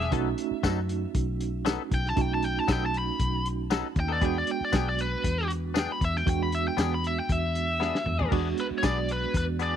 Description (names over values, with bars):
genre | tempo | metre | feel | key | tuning
straight-eighth soul blues | 117 BPM | 4/4 | straight | E mixolydian | A4 = 440 Hz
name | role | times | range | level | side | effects
biting lead guitar | melody | 0.0-9.8 s | B4 to B5 | -30 LUFS | left 1 dB | overdrive
tine electric piano | accompaniment | 0.0-9.8 s | G#3 to F#4 | -32 LUFS | right 17 dB | medium tremolo
direct-recorded clean electric guitar | stabs | 0.0-9.8 s | F#3 to A4 | -33 LUFS | left 14 dB | analog chorus
vintage muted fingered electric bass | bass | 0.0-9.8 s | E1 to F#2 | -30 LUFS | left 1 dB | none
warm soul drum kit | drums | 0.0-9.7 s | crash cymbal, hi-hat, kick drum, snare drum, tambourine, toms | -30 LUFS | left 1 dB | none
room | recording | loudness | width
small room ambience | 1960s-style stereo with parts hard left and right | -25 LUFS | side -9 dB against mid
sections
0.0-8.3 A section; 8.3-9.8 B section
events
lead electric guitar solo 0.0-8.3; drum fill 7.8-8.3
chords
0.1 B7; 4.2 E7